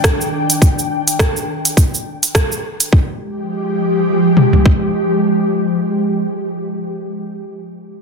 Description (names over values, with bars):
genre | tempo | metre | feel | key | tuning
organic downtempo | 104 BPM | 4/4 | swing 57% on 16ths | F dorian | A4 = 439 Hz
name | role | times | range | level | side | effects
ethereal airy pad | sustained chords | 0.0-6.0 s | Eb3 to G5 | -17 LUFS | equal | ensemble chorus, built-in reverb, sidechain pumping
organic electronic drum kit | drums | 0.0-4.8 s | kick drum, toms | -13 LUFS | equal | overdrive
organic electronic drum kit | drums | 0.0-2.9 s | cabasa, hi-hat, rim click | -16 LUFS | right 2 dB | overdrive
room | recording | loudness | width
light reverb, digital ambience | dense, heavily limited modern master | -13 LUFS | side -5 dB against mid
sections
0.0-2.9 A section; 2.9-5.2 B section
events
none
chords
0.0 Ebmaj7; 2.9 Fmadd9